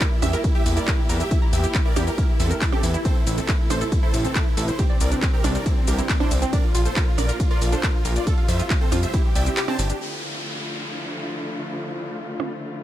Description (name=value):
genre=uplifting trance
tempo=138 BPM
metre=4/4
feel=straight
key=D minor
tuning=A4 = 440 Hz
part: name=supersaw chords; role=melody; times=0.0-10.0 s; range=C4 to A5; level=-29 LUFS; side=right 1 dB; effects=sidechain pumping, digital delay
part: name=warm studio string section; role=sustained chords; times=0.0-12.8 s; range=Bb2 to A4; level=-32 LUFS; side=left 2 dB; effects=sidechain pumping, low-pass filter
part: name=wide unison pluck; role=arpeggios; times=0.0-10.0 s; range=C4 to Bb5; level=-31 LUFS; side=right 2 dB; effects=sidechain pumping, ping-pong delay
part: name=electronic kick drum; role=drums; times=0.0-9.2 s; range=none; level=-21 LUFS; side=equal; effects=none
part: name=techno drum kit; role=drums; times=0.0-12.5 s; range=handclaps, hi-hat, percussion blips, ride cymbal, shaker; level=-28 LUFS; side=right 2 dB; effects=low-pass filter on hats, low-pass filter on perc, low-pass filter on snare, low-pass filter on cymbals, low-pass filter on room
part: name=fat analog bass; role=bass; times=0.2-9.9 s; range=G1 to F2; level=-23 LUFS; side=equal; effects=tube saturation, sidechain pumping
part: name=downlifter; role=sound effects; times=10.0-12.8 s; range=none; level=-32 LUFS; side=equal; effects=none
room=little or no reverb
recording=none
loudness=-20 LUFS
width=side -13 dB against mid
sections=0.0-10.0 A section; 10.0-12.8 B section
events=drop 0.0-10.0; break 9.6-10.0; filter sweep on string section 10.0-12.8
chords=0.0 Edim; 3.0 Am; 4.8 Cadd9; 6.5 Bb; 8.3 Fadd9; 9.1 Cadd9; 10.0 Dmadd9